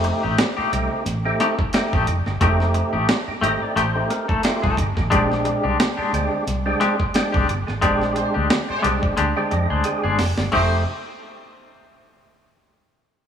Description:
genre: funk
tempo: 89 BPM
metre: 4/4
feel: swing 56% on 16ths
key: F mixolydian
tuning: A4 = 440 Hz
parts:
  - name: semi-hollow electric guitar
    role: accompaniment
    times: 0.0-10.7 s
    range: Ab3 to A4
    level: -24 LUFS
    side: left 4 dB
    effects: tremolo
  - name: percussive tonewheel organ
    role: stabs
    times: 0.0-10.8 s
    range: Ab3 to Eb5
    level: -24 LUFS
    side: right 2 dB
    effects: overdrive, fast rotary speaker
  - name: vintage muted fingered electric bass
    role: bass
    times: 0.0-10.8 s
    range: F1 to F2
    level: -23 LUFS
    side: equal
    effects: none
  - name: breakbeat sampler-style drum kit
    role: drums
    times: 0.0-10.7 s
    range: crash cymbal, hi-hat, kick drum, snare drum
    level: -23 LUFS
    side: equal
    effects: none
  - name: clear horn section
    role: second line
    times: 8.2-10.8 s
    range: Ab3 to C5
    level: -29 LUFS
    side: right 1 dB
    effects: none
room: moderate lush hall reverb, RT60 2.8 s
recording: rough home demo mix, small room ambience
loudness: -18 LUFS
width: side -8 dB against mid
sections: 0.0-10.5 A section; 10.5-13.2 B section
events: tonewheel organ fill 3.1-5.1, 9.2-10.5; band accent 7.8-10.5; drum fill 9.2-10.5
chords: 0.0 F9; 5.1 Bb13; 10.5 F9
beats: 0.38 1.06 1.73 | 2.41 3.08 3.76 4.44 | 5.11 5.79 6.47 7.14 | 7.82 8.50 9.17 9.85 | 10.52

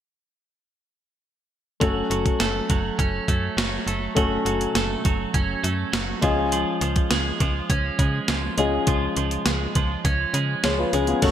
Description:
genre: 1980s-style pop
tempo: 102 BPM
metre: 4/4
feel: straight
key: F# minor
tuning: A4 = 438 Hz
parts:
  - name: dark grand piano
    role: accompaniment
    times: 1.8-11.3 s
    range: G#3 to C#5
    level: -26 LUFS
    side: left 4 dB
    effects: none
  - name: twelve-string electric guitar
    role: riff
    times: 1.8-11.3 s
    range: E#3 to C#4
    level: -26 LUFS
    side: right 5 dB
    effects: wide subtle chorus, digital delay
  - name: slap-like FM bass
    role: bass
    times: 1.8-11.3 s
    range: F#1 to C#3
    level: -27 LUFS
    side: equal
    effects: none
  - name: clean 12-bit digital drum machine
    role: drums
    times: 1.8-11.3 s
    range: crash cymbal, hi-hat, kick drum, snare drum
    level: -24 LUFS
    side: equal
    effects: gated reverb
  - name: breathy bright small flute group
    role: sustained chords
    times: 11.2-11.3 s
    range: A4 to C#6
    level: -30 LUFS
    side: right 2 dB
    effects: none
room: moderate plate reverb, RT60 2.6 s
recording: bright 1980s-style digital production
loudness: -20 LUFS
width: side -10 dB against mid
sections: 1.8-11.2 A section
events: none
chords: 1.8 F#m; 6.2 C#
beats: | 1.82 2.40 2.99 3.58 | 4.17 4.76 5.35 5.93 | 6.52 7.11 7.70 8.29 | 8.88 9.46 10.05 10.64 | 11.23

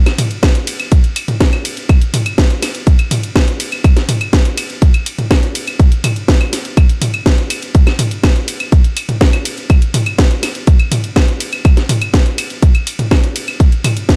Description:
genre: techno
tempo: 123 BPM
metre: 4/4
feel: straight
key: none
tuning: none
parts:
  - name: house drum kit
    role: drums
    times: 0.1-14.2 s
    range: claves, hi-hat, ride cymbal, snare drum, toms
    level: -19 LUFS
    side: equal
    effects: none
  - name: electronic kick drum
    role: drums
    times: 0.4-14.2 s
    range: none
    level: -12 LUFS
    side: equal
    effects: none
room: light reverb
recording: none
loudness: -13 LUFS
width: mono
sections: 0.0-14.2 A section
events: none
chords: none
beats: 0.43 0.92 1.41 | 1.89 2.38 2.87 3.36 | 3.85 4.33 4.82 5.31 | 5.80 6.28 6.77 7.26 | 7.75 8.23 8.72 9.21 | 9.70 10.19 10.67 11.16 | 11.65 12.14 12.62 13.11 | 13.60 14.09

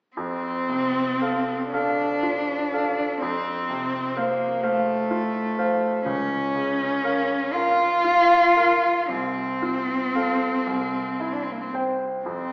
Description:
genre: classical, romantic duo for cello and grand piano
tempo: 37-42 BPM (dotted quarters)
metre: 6/8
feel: rubato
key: F major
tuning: A4 = 439 Hz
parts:
  - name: clear cello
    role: melody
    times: 0.2-12.5 s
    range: A3 to F4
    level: -22 LUFS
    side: equal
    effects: none
  - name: bright concert grand piano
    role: accompaniment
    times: 0.2-12.5 s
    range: C2 to G5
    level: -26 LUFS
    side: equal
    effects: none
room: wet recital hall reverb, RT60 1.5 s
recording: recorded in a church or concert hall, AM radio sound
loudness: -20 LUFS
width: side -24 dB against mid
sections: 0.2-12.5 A section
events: none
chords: 0.2 F; 6.1 Bbm/Db; 9.1 F/C; 10.7 C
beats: | 0.16 1.72 | 3.21 4.63 | 6.07 7.54 | 9.09 10.65 | 12.25

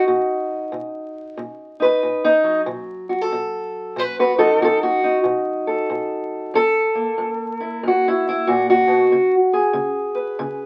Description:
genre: acoustic country blues, solo or duo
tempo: 93 BPM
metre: 4/4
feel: swing 63% on 8ths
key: unclear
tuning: A4 = 440 Hz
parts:
  - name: fingerpicked steel-string acoustic guitar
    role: solo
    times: 0.0-10.7 s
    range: F#2 to B4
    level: -20 LUFS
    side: equal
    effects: none
room: moderate studio reverb, RT60 0.6 s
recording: very old 78 rpm record, vinyl crackle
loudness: -19 LUFS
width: mono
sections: 0.0-10.7 A section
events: steel-string acoustic guitar solo 0.0-10.7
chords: 0.0 B7; 6.5 F#7; 9.1 C#5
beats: 0.10 0.74 | 1.39 2.03 2.68 3.33 | 3.97 4.61 5.26 5.90 | 6.54 7.19 7.83 8.47 | 9.12 9.76 10.40

